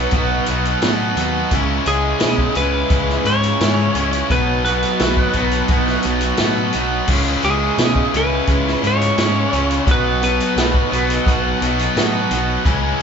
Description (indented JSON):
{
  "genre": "classic rock",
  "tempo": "86 BPM",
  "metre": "4/4",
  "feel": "straight",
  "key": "unclear",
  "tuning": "A4 = 440 Hz",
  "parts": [
    { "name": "lightly driven lead guitar", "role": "melody", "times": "0.0-11.6 s", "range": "G#4 to C#5", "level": "-22 LUFS", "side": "left 1 dB", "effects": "none" },
    { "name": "clear flugelhorn", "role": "second line", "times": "0.0-11.6 s", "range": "G#3 to E4", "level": "-30 LUFS", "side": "right 4 dB", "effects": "none" },
    { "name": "bright tonewheel organ", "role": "sustained chords", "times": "0.0-13.0 s", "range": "E3 to C#5", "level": "-30 LUFS", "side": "equal", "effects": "none" },
    { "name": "crunchy overdriven guitar", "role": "riff", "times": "0.0-13.0 s", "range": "B2 to C#4", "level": "-25 LUFS", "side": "equal", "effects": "phaser" },
    { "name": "overdriven electric guitar", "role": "riff", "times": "0.0-13.0 s", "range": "B2 to F#4", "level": "-23 LUFS", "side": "left 7 dB", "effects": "none" },
    { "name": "overdriven semi-hollow guitar", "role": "riff", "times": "0.0-13.0 s", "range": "B2 to C#4", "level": "-22 LUFS", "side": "right 5 dB", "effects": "none" },
    { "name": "growling picked electric bass", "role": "bass", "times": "0.0-12.9 s", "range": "B1 to B2", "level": "-22 LUFS", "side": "equal", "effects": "overdrive" },
    { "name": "vintage drum kit", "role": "drums", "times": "0.1-12.8 s", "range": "crash cymbal, hi-hat, kick drum, snare drum", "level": "-21 LUFS", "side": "equal", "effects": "none" }
  ],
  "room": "moderate large studio reverb, RT60 1.1 s",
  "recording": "band playing live in one room, nothing above 7.7 kHz",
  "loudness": "-15 LUFS",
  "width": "side -6 dB against mid",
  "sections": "0.0-13.0 A section",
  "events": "none",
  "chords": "0.0 B; 1.5 C#m; 4.3 B; 7.1 C#m; 9.9 B",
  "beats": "0.13 0.83 | 1.52 2.22 2.91 3.61 | 4.30 5.00 5.70 6.39 | 7.09 7.78 8.48 9.17 | 9.87 10.56 11.26 11.95 | 12.65"
}